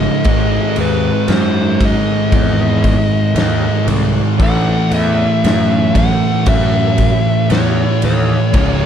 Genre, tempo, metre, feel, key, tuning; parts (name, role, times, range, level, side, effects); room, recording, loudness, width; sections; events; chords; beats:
stoner and doom metal; 58 BPM; 4/4; straight; A4 = 444 Hz
fuzz lead guitar; melody; 0.0-8.9 s; B4 to F#5; -20 LUFS; left 2 dB; distortion, slapback echo
biting overdriven guitar; riff; 0.0-8.9 s; C#2 to A3; -21 LUFS; right 1 dB
thick fuzz guitar; riff; 0.0-8.9 s; C#2 to A3; -19 LUFS; left 9 dB; distortion
thick fuzz guitar; riff; 0.0-8.9 s; C#2 to A3; -17 LUFS; right 6 dB; distortion
fuzz picked electric bass; bass; 0.0-8.9 s; C#1 to F#2; -20 LUFS; left 1 dB; overdrive
big rock drum kit; drums; 0.2-8.8 s; crash cymbal, kick drum, ride cymbal, snare drum; -18 LUFS; equal
light reverb, studio reverb; dark, warm production; -11 LUFS; side -8 dB against mid
0.0-8.9 A section
0.3 G#5; 4.4 A5
| 0.26 1.30 2.33 3.37 | 4.40 5.44 6.47 7.51 | 8.54